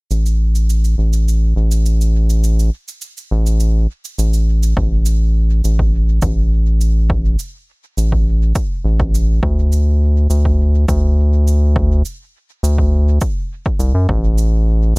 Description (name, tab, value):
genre	ambient dub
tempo	103 BPM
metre	4/4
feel	straight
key	unclear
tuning	A4 = 440 Hz
part	round analog bass	bass	0.1-15.0 s	A1 to F#2	-12 LUFS	equal	none
part	cabasa	drums	0.1-15.0 s	none	-32 LUFS	right 5 dB	dub echo
part	electronic kick drum	drums	4.8-14.2 s	none	-20 LUFS	equal	overdrive
room	little or no reverb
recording	none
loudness	-13 LUFS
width	side -32 dB against mid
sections	0.1-4.8 A section; 4.8-15.0 B section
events	none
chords	none